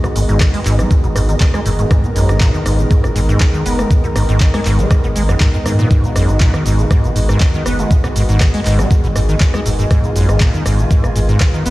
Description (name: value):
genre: acid house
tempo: 120 BPM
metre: 4/4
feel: straight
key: G# dorian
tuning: A4 = 439 Hz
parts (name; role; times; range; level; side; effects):
- warm analog pad; sustained chords; 0.0-11.7 s; D#3 to A#4; -23 LUFS; equal; lush chorus, sidechain pumping
- deep acid bass; riff; 0.0-11.7 s; F#2 to B3; -17 LUFS; equal; tube saturation, analog chorus, tape echo
- punchy analog drum machine; drums; 0.0-11.7 s; handclaps, hi-hat, rim click, shaker; -23 LUFS; equal; none
- deep dark ambient pad; texture; 0.0-11.7 s; G#4 to A#5; -26 LUFS; right 1 dB; chorus, built-in reverb, sidechain pumping
- warm sub bass; bass; 0.2-11.7 s; F#1 to G#2; -17 LUFS; equal; sidechain pumping
- electronic kick drum; drums; 0.4-11.5 s; none; -13 LUFS; equal; none
room: light reverb, digital ambience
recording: played on a big sound system in a bare room, stone room reverb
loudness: -11 LUFS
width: side -18 dB against mid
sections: 0.0-11.7 A section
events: none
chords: 0.0 G#m